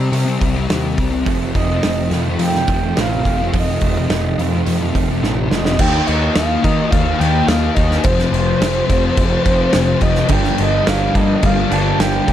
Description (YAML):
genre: rock, shoegaze and dream pop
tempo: 106 BPM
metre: 4/4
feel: straight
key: unclear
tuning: A4 = 440 Hz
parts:
  - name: thick fuzz guitar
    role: riff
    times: 0.0-12.3 s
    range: F2 to Eb4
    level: -19 LUFS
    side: left 5 dB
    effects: distortion, analog chorus
  - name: growling picked electric bass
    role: bass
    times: 0.0-12.3 s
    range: F1 to Eb3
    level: -20 LUFS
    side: equal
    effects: overdrive
  - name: loose indie drum kit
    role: drums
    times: 0.1-12.3 s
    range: crash cymbal, hi-hat, kick drum, snare drum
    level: -19 LUFS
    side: equal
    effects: none
  - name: direct-recorded clean electric guitar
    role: riff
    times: 1.3-5.8, 10.3-12.3 s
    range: F2 to D4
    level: -23 LUFS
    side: right 13 dB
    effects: reverse reverb
  - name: breathy flute-like synth lead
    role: melody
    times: 1.5-12.3 s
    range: C5 to A5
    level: -21 LUFS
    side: right 2 dB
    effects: chorus, tape echo
room: light reverb, small room ambience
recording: none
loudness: -14 LUFS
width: side -11 dB against mid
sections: 0.0-5.8 A section; 5.8-12.3 B section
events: drum fill 5.2-5.8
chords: 0.0 Cm; 1.3 F7; 5.8 Eb5; 8.1 F5; 10.3 Gm7